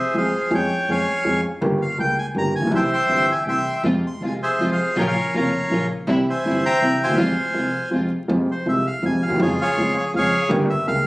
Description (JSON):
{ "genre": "tango", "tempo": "162 BPM", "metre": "3/4", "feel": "rubato", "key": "F harmonic minor", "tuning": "A4 = 440 Hz", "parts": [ { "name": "bandoneon", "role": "melody", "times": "0.0-11.1 s", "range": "F4 to C6", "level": "-21 LUFS", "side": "equal", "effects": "none" }, { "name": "dark upright piano", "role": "accompaniment", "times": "0.1-11.0 s", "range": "F1 to Ab4", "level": "-21 LUFS", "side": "equal", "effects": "none" }, { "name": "upright bass", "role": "bass", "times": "0.1-11.0 s", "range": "F1 to F2", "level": "-30 LUFS", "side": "equal", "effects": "none" }, { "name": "warm studio string section", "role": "stabs", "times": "3.8-8.1 s", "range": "G3 to F4", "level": "-29 LUFS", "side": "equal", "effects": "none" } ], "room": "moderate large studio reverb, RT60 1.1 s", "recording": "recorded on a phone in the room, club reverb, vinyl crackle", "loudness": "-18 LUFS", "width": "side -21 dB against mid", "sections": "0.0-8.3 A section; 8.3-11.1 A section", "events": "none", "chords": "0.0 Fm; 0.5 Db/F; 1.6 Gdim; 2.7 C; 3.8 Fm; 5.0 Bbm; 6.1 C; 7.2 Fm; 9.4 Db/F; 10.5 Gdim", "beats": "0.14 | 0.51 0.87 1.24 | 1.61 1.98 2.35 | 2.72 3.09 3.47 | 3.84 4.22 4.59 | 4.96 5.33 5.70 | 6.07 6.44 6.81 | 7.17 7.54 7.92 | 8.29 8.66 9.03 | 9.40 9.77 10.14 | 10.51 10.87" }